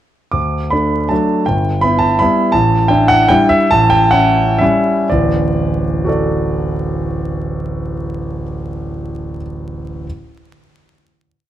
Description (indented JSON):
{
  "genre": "classical, piano waltz",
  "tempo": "113-173 BPM",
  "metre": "3/4",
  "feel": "rubato",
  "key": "D major",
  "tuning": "A4 = 444 Hz",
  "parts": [
    { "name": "clear concert grand piano", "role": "solo", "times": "0.3-10.1 s", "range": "D1 to D6", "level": "-13 LUFS", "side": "equal", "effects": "none" }
  ],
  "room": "light reverb",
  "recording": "close, detailed microphones, vinyl crackle",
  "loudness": "-12 LUFS",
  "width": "side -12 dB against mid",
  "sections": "0.3-5.1 A section; 5.1-7.9 final chord",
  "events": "slowing down 2.0-5.1",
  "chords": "0.3 D; 1.5 Em/G; 2.6 A7sus4; 3.7 A7; 5.1 D"
}